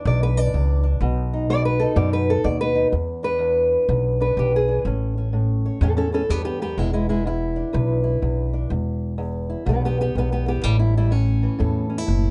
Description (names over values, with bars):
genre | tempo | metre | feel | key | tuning
acoustic country blues, solo or duo | 125 BPM | 4/4 | swing 62% on 8ths | unclear | A4 = 440 Hz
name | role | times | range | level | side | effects
fingerpicked old ladder-braced acoustic guitar | melody | 0.0-12.3 s | E2 to D5 | -25 LUFS | equal | none
upright bass | bass | 0.1-12.3 s | E1 to F#2 | -24 LUFS | equal | none
room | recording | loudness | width
little or no reverb | dark, warm production, nothing above 10.9 kHz | -21 LUFS | mono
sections
0.0-2.9 A section; 2.9-12.3 B section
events
steel-string acoustic guitar solo 0.0-2.9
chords
0.0 E5; 1.0 B; 2.9 E5; 4.9 A7; 6.8 E7(no3); 10.6 A7